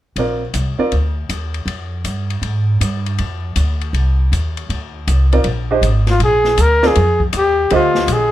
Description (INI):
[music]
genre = modal jazz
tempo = 159 BPM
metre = 4/4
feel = swing 66% on 8ths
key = Bb mixolydian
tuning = A4 = 445 Hz
[part]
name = clear upright piano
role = accompaniment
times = 0.2-0.9, 5.3-8.3 s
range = D3 to Eb5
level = -18 LUFS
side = right 3 dB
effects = none
[part]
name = upright bass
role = bass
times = 0.2-8.3 s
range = Ab1 to Ab2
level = -17 LUFS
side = equal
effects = none
[part]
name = open jazz drum kit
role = drums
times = 0.2-8.2 s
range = hi-hat, kick drum, ride cymbal, snare drum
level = -26 LUFS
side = left 4 dB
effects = none
[part]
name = warm trumpet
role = melody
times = 6.1-8.3 s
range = F4 to Bb4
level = -14 LUFS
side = left 1 dB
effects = none
[sound]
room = light reverb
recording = minimal, uncompressed stereo recording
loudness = -14 LUFS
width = side -13 dB against mid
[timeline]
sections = 0.2-6.2 A section; 6.2-8.3 B section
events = none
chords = 0.2 Bb9